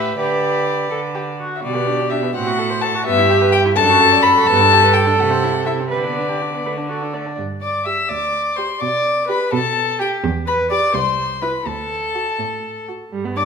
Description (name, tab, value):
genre	quick classical-period movement for string quartet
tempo	83 BPM (dotted quarters)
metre	6/8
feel	straight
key	G major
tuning	A4 = 441 Hz
part	dark violin	melody	0.0-13.4 s	D5 to E6	-18 LUFS	left 6 dB	none
part	dark violin	second line	0.0-13.4 s	G3 to E5	-23 LUFS	equal	none
part	warm viola	accompaniment	0.0-13.4 s	G3 to D5	-20 LUFS	right 4 dB	none
part	rich cello	bass	0.0-13.4 s	C2 to D3	-23 LUFS	right 4 dB	none
room	wet recital hall reverb, RT60 1.4 s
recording	minimal, uncompressed stereo recording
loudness	-15 LUFS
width	side -6 dB against mid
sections	0.0-7.4 A section; 7.4-13.4 B section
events	none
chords	0.2 G/D; 1.6 G/B; 2.4 F#dim/A; 3.1 Em/G; 3.8 D/F#; 4.5 G; 5.2 Am/C; 5.9 G/D; 6.7 D; 7.4 G5; 8.8 G/B; 10.2 Em; 10.9 C; 11.7 D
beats	| 0.19 0.92 | 1.64 2.36 | 3.07 3.78 | 4.48 5.19 | 5.92 6.66 | 7.39 8.11 | 8.82 9.53 | 10.24 10.95 | 11.67 12.40 | 13.12